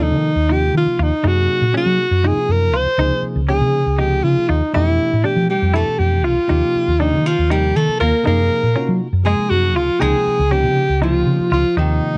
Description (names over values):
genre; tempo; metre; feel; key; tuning
jazz; 240 BPM (eighths); 7/8; straight; unclear; A4 = 437 Hz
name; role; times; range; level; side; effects
clear alto saxophone; melody; 0.0-12.2 s; Eb4 to C5; -20 LUFS; equal; none
barky tine electric piano; accompaniment; 0.0-12.2 s; Cb3 to G5; -26 LUFS; equal; none
semi-hollow electric guitar; stabs; 0.0-11.9 s; Db4 to F4; -26 LUFS; equal; analog chorus
hollow-body short-scale fingered electric bass; bass; 0.0-12.2 s; C2 to Gb3; -20 LUFS; equal; none
vintage hollow-body jazz guitar; second line; 5.5-12.2 s; Eb3 to Bb3; -27 LUFS; equal; none
room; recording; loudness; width
little or no reverb; dry, close 1970s-style studio recording; -17 LUFS; mono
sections
0.0-12.2 A section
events
none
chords
0.0 Ebsus2; 1.2 Gbmaj9; 3.0 Dbmaj9; 4.7 Fmaj9; 6.5 Ebadd9; 8.3 Gbmaj9; 10.0 Dbmaj9